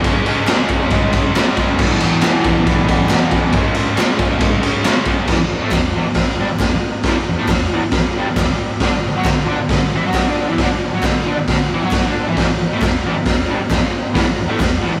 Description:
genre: garage rock duo or trio.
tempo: 136 BPM.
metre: 4/4.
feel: straight.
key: E mixolydian.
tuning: A4 = 440 Hz.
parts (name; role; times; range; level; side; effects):
fuzz guitar; riff; 0.0-15.0 s; E2 to F#4; -21 LUFS; equal; distortion.
raw garage drum kit; drums; 0.0-14.7 s; crash cymbal, hi-hat, kick drum, ride cymbal, snare drum; -18 LUFS; equal; none.
group handclap; percussion; 0.5-14.7 s; none; -33 LUFS; equal; none.
room: light reverb.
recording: band playing live in one room.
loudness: -16 LUFS.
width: mono.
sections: 0.0-5.3 A section; 5.3-15.0 B section.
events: none.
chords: 0.1 C#5; 1.8 E5; 3.5 C#5; 5.3 N.C.; 8.8 Dadd9; 12.4 Esus4.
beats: | 0.05 0.49 0.92 1.36 | 1.79 2.23 2.67 3.10 | 3.54 3.98 4.41 4.85 | 5.29 5.73 6.17 6.61 | 7.05 7.49 7.93 8.37 | 8.81 9.26 9.70 10.14 | 10.59 11.03 11.47 11.92 | 12.36 12.81 13.25 13.70 | 14.14 14.59.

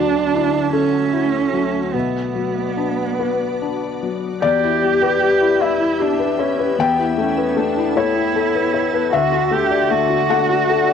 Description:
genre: neoclassical piano and strings.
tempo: 51 BPM (dotted quarters).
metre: 6/8.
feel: rubato.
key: E dorian.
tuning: A4 = 439 Hz.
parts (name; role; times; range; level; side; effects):
dark cello; second line; 0.0-10.9 s; B3 to G4; -19 LUFS; right 7 dB; cassette tape.
felt-muted upright piano; accompaniment; 0.0-10.9 s; B1 to G5; -18 LUFS; left 7 dB; cassette tape.
soft additive organ-like pad; sustained chords; 0.0-10.9 s; A3 to F#5; -28 LUFS; left 1 dB; ensemble chorus, built-in reverb, cassette tape.
room: light reverb.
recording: home recording on cassette.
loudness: -16 LUFS.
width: side -7 dB against mid.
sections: 0.0-4.4 A section; 4.4-10.9 B section.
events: none.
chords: 0.0 Dadd9; 1.9 Bm; 4.4 Em; 6.8 Aadd9/E; 9.1 Dadd9.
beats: 0.74 | 1.94 3.20 | 4.43 5.61 | 6.79 7.96 | 9.13 10.30.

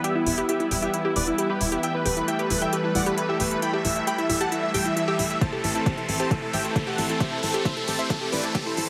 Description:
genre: uplifting trance.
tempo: 134 BPM.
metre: 4/4.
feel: straight.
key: E minor.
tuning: A4 = 440 Hz.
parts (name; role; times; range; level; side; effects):
dense compressed supersaw; melody; 0.0-8.9 s; E4 to B5; -29 LUFS; equal; sidechain pumping, low-pass filter, delay.
lush unison pad; sustained chords; 0.0-8.9 s; E3 to C4; -32 LUFS; equal; chorus, vintage 12-bit sampler grit, sidechain pumping.
unison pluck; arpeggios; 0.0-8.8 s; E4 to G4; -32 LUFS; equal; sidechain pumping, delay.
electronic hi-hat; drums; 0.0-8.9 s; none; -32 LUFS; equal; overdrive.
riser; sound effects; 1.0-8.9 s; none; -37 LUFS; equal; none.
tight sequencer bass; bass; 0.3-8.9 s; E1 to A1; -34 LUFS; equal; sidechain pumping.
electronic kick drum; drums; 5.4-8.6 s; none; -29 LUFS; equal; overdrive.
room: light reverb, digital ambience.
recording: high-pass filter.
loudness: -25 LUFS.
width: mono.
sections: 0.0-8.9 A section.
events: build-up 0.0-8.9; filter sweep on synth arpeggio sound 0.0-8.9; filter sweep 0.0-8.9; riser 1.0-8.9; drum fill 5.4-8.9.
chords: 0.0 Em; 5.4 Am.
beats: | 0.04 0.49 0.94 1.38 | 1.83 2.28 2.73 3.17 | 3.62 4.07 4.52 4.97 | 5.41 5.86 6.31 6.76 | 7.21 7.65 8.10 8.55.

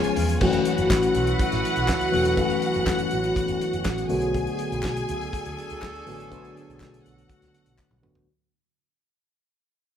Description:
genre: disco.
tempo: 122 BPM.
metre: 4/4.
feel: straight.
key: F# minor.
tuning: A4 = 439 Hz.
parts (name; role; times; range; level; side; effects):
clear studio string section; second line; 0.0-8.0 s; E#4 to G#5; -30 LUFS; left 1 dB; none.
mellow tine electric piano; accompaniment; 0.0-8.3 s; D3 to G#4; -26 LUFS; left 4 dB; slow stereo tremolo.
dark French horn section; sustained chords; 0.0-8.3 s; C#3 to C#5; -30 LUFS; right 4 dB; none.
damped 70s drum kit; drums; 0.0-8.3 s; crash cymbal, handclaps, hi-hat, kick drum, snare drum, toms; -29 LUFS; equal; none.
picked electric bass with an envelope filter; bass; 0.2-8.2 s; E1 to E2; -30 LUFS; right 1 dB; none.
clear horn section; stabs; 0.4-7.7 s; D4 to B4; -32 LUFS; right 2 dB; none.
group handclap; percussion; 0.9-7.9 s; none; -37 LUFS; left 1 dB; none.
room: moderate large studio reverb, RT60 1.2 s.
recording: band playing live in one room.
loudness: -21 LUFS.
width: side -9 dB against mid.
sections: 0.4-8.3 A section.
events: fade-out 0.4-8.3; drum fill 7.8-8.3.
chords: 0.4 F#m7; 4.1 Bm7.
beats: | 0.42 0.91 1.40 1.89 | 2.38 2.87 3.36 3.85 | 4.34 4.83 5.33 5.82 | 6.31 6.80 7.29 7.78.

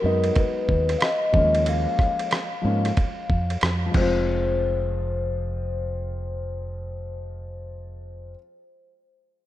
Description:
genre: hip hop, jazz-hop.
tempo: 92 BPM.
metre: 4/4.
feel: swing 63% on 16ths.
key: F minor.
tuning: A4 = 441 Hz.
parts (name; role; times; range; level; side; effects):
vibraphone with soft mallets; melody; 0.0-8.4 s; Bb4 to F5; -26 LUFS; left 3 dB; none.
dark grand piano; accompaniment; 0.0-8.4 s; F3 to F4; -30 LUFS; left 1 dB; none.
deep dub fingered electric bass; bass; 0.0-8.3 s; F1 to Ab2; -27 LUFS; right 1 dB; none.
dusty soul sampler-style drum kit; drums; 0.2-4.1 s; crash cymbal, hi-hat, kick drum, ride cymbal, rim click; -25 LUFS; right 1 dB; none.
room: light reverb.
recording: rough home demo mix.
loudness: -21 LUFS.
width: side -14 dB against mid.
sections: 0.0-4.3 A section; 4.3-6.9 B section.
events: none.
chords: 0.0 Db9sus4 (rootless); 1.3 Eb9sus4; 3.9 Fm.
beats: 0.36 1.01 | 1.66 2.31 2.97 3.62 | 4.27 4.92 5.58 6.23.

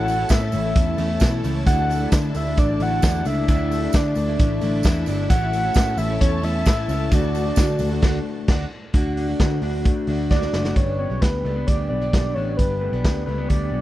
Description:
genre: jangly indie pop.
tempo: 132 BPM.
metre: 4/4.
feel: straight.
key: D major.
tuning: A4 = 440 Hz.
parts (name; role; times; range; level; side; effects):
soft octave-layered synth lead; melody; 0.0-13.8 s; B4 to F#5; -26 LUFS; equal; chorus, slapback echo.
picked plugged-in twelve-string acoustic guitar; accompaniment; 0.0-13.8 s; G2 to F#4; -30 LUFS; right 4 dB; none.
warm studio string section; sustained chords; 0.0-8.9 s; E4 to A5; -35 LUFS; left 1 dB; none.
electric guitar through a small old amp; arpeggios; 0.0-13.8 s; G2 to F#4; -28 LUFS; left 5 dB; vibrato effect, slapback echo.
vintage muted picked electric bass; bass; 0.0-13.8 s; F#1 to D3; -24 LUFS; equal; none.
raw garage drum kit; drums; 0.1-13.6 s; crash cymbal, hi-hat, kick drum, ride cymbal, snare drum; -21 LUFS; equal; none.
tambourine; percussion; 0.1-7.9 s; none; -40 LUFS; right 14 dB; none.
room: little or no reverb.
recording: dry, close 1970s-style studio recording.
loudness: -18 LUFS.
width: side -15 dB against mid.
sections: 0.0-8.9 A section; 8.9-10.8 B section; 10.8-13.8 C section.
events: band accent 8.0-8.9; drum fill 10.3-10.8.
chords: 0.0 A; 1.7 Dsus2; 5.3 A; 7.1 D; 10.8 G.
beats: 0.30 0.75 1.21 | 1.66 2.12 2.57 3.03 | 3.48 3.94 4.39 4.85 | 5.30 5.76 6.21 6.67 | 7.12 7.58 8.03 8.49 | 8.94 9.40 9.85 10.31 | 10.76 11.22 11.68 12.13 | 12.59 13.04 13.50.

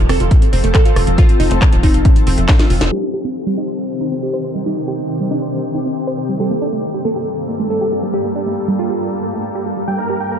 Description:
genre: uplifting trance.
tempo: 138 BPM.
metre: 4/4.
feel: straight.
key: unclear.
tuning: A4 = 440 Hz.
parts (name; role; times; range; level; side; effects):
shimmering ambient pad; sustained chords; 0.0-10.4 s; Eb2 to A4; -22 LUFS; left 1 dB; chorus, built-in reverb, sidechain pumping.
wide unison pluck; arpeggios; 0.0-10.3 s; F3 to C5; -22 LUFS; right 3 dB; sidechain pumping, digital delay.
tight sequencer bass; bass; 0.0-2.9 s; Eb1 to F1; -16 LUFS; equal; sidechain pumping.
glassy wavetable pluck; second line; 0.1-9.4 s; D4 to A4; -22 LUFS; equal; chorus, ping-pong delay.
techno drum kit; drums; 0.1-2.9 s; handclaps, hi-hat, rim click, snare drum; -23 LUFS; left 1 dB; none.
electronic kick drum; drums; 0.3-2.6 s; none; -11 LUFS; equal; none.
downlifter; sound effects; 3.2-6.4 s; none; -48 LUFS; left 1 dB; none.
big supersaw lead; melody; 9.9-10.4 s; Bb4 to G5; -21 LUFS; right 1 dB; sidechain pumping.
room: light reverb, digital ambience.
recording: dark, warm production, low-pass filter.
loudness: -14 LUFS.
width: side -8 dB against mid.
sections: 0.0-2.9 A section; 2.9-10.4 B section.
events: drum fill 2.5-2.9; band accent 2.8; filter sweep on synth pluck 2.9-10.4; filter sweep 2.9-10.4.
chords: 0.0 F; 2.9 Cm; 6.4 Gmadd9; 9.9 Eb.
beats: 0.31 0.75 | 1.18 1.62 2.05 2.49 | 2.92 3.36 3.79 4.22 | 4.66 5.09 5.53 5.96 | 6.40 6.83 7.27 7.70 | 8.14 8.57 9.01 9.44 | 9.88 10.31.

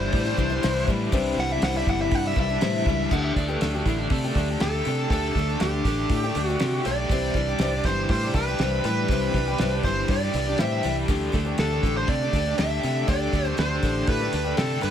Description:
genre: folk rock and heartland rock.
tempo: 120 BPM.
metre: 4/4.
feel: straight.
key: unclear.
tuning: A4 = 440 Hz.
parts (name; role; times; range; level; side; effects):
dark smooth lead guitar; melody; 0.0-14.9 s; G4 to F#5; -27 LUFS; right 1 dB; overdrive.
picked twelve-string acoustic guitar; accompaniment; 0.0-14.9 s; C3 to G4; -29 LUFS; left 6 dB; none.
overdriven electric guitar; riff; 0.0-14.9 s; C3 to G4; -30 LUFS; right 1 dB; tremolo.
fingered electric bass; bass; 0.0-14.9 s; G1 to C3; -28 LUFS; right 1 dB; none.
cloth-damped thuddy drum kit; drums; 0.1-14.9 s; crash cymbal, hi-hat, kick drum, snare drum; -28 LUFS; right 1 dB; none.
overdriven slide guitar; second line; 3.1-4.5 s; D4 to F#5; -33 LUFS; right 5 dB; none.
room: small room ambience.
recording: none.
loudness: -21 LUFS.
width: side -9 dB against mid.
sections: 0.0-3.1 A section; 3.1-14.9 B section.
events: lead electric guitar solo 0.0-3.1.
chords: 0.0 Cadd9; 3.1 Dsus4; 7.1 Cadd9; 11.1 Dsus4.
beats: 0.14 0.64 | 1.13 1.63 2.13 2.62 | 3.12 3.62 4.11 4.61 | 5.11 5.61 6.11 6.60 | 7.10 7.60 8.10 8.60 | 9.10 9.59 10.09 10.59 | 11.09 11.59 12.09 12.59 | 13.08 13.58 14.08 14.58.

